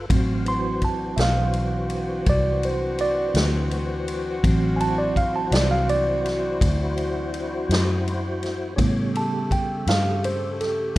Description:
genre	slow blues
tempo	55 BPM (dotted quarters)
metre	12/8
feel	straight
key	D mixolydian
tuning	A4 = 440 Hz
part	tonewheel organ	sustained chords	0.0-11.0 s	C#3 to F5	-31 LUFS	left 2 dB	overdrive, chorus vibrato, slow rotary speaker
part	vintage muted fingered electric bass	bass	0.0-10.9 s	A1 to A2	-25 LUFS	equal	none
part	tine electric piano	accompaniment	0.1-10.9 s	C#3 to C6	-25 LUFS	right 2 dB	medium stereo tremolo
part	warm saxophone section	sustained chords	0.1-11.0 s	A3 to G4	-32 LUFS	left 2 dB	none
part	swinging big-band drum kit	drums	0.1-11.0 s	kick drum, ride cymbal, snare drum	-26 LUFS	equal	vintage 12-bit sampler grit
room	studio reverb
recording	rough home demo mix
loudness	-20 LUFS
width	side -17 dB against mid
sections	0.0-11.0 A section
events	tine electric piano solo 0.0-11.0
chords	0.1 D7; 8.8 A7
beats	| 0.10 1.18 2.27 3.35 | 4.44 5.52 6.61 7.69 | 8.78 9.87 10.95

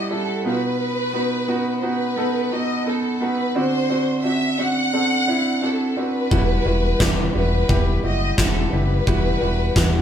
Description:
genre	piano-driven pop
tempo	87 BPM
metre	4/4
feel	swing 56% on 16ths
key	unclear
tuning	A4 = 441 Hz
part	warm studio violin section	melody	0.0-10.0 s	A4 to F#5	-24 LUFS	left 1 dB	none
part	clear baby grand piano	accompaniment	0.0-10.0 s	B2 to A4	-22 LUFS	right 1 dB	none
part	chorused synth bass	bass	6.3-10.0 s	E1 to F#1	-21 LUFS	equal	none
part	huge arena drum kit	drums	6.3-9.9 s	handclaps, kick drum, snare drum	-21 LUFS	equal	none
room	moderate stone room reverb, RT60 1.0 s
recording	band playing live in one room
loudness	-18 LUFS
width	side -9 dB against mid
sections	0.0-10.0 A section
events	none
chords	0.4 B; 3.6 D7; 6.3 Emadd9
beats	0.10 | 0.79 1.48 2.17 2.86 | 3.55 4.24 4.93 5.62 | 6.31 7.00 7.69 8.38 | 9.07 9.76

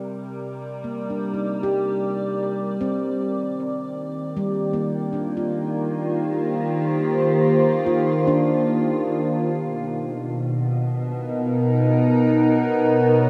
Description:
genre	ambient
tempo	77 BPM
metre	4/4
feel	straight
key	unclear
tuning	A4 = 441 Hz
part	evolving wavetable pad	sustained chords	0.0-13.3 s	B2 to D5	-23 LUFS	equal	chorus, built-in reverb
part	handpan	arpeggios	0.0-9.8 s	G3 to G4	-29 LUFS	equal	dub echo
room	wet plate reverb, RT60 2.6 s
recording	echo-heavy mix, cassette tape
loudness	-22 LUFS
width	mono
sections	0.0-13.3 A section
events	fade-in on ambient pad 0.0-13.3; fade-in on handpan 0.0-13.3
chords	0.0 Cm9; 3.2 Eb69; 9.5 Bmaj7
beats	| 0.06 0.85 1.63 2.41 | 3.19 3.97 4.75 5.53 | 6.30 7.08 7.87 8.67 | 9.46 10.25 11.04 11.82 | 12.60

